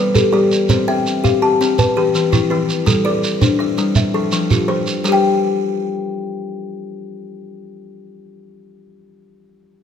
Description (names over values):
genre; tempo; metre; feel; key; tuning
southern african traditional, mbira-style interlocking cycle; 111 BPM (dotted quarters); 12/8; straight; unclear; A4 = 439 Hz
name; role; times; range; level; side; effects
buzzing kalimba; arpeggios; 0.0-9.1 s; E3 to A5; -17 LUFS; left 5 dB; none
buzzing kalimba; arpeggios; 0.0-9.1 s; E3 to A5; -21 LUFS; right 4 dB; none
shekere; percussion; 0.2-5.2 s; none; -20 LUFS; right 3 dB; none
room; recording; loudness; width
moderate recital hall reverb, RT60 1.7 s; close, detailed microphones; -14 LUFS; side -8 dB against mid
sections
0.0-5.0 A section; 5.0-9.4 B section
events
none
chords
0.0 G; 0.7 C; 1.8 Em; 2.9 G; 4.0 F; 5.0 N.C.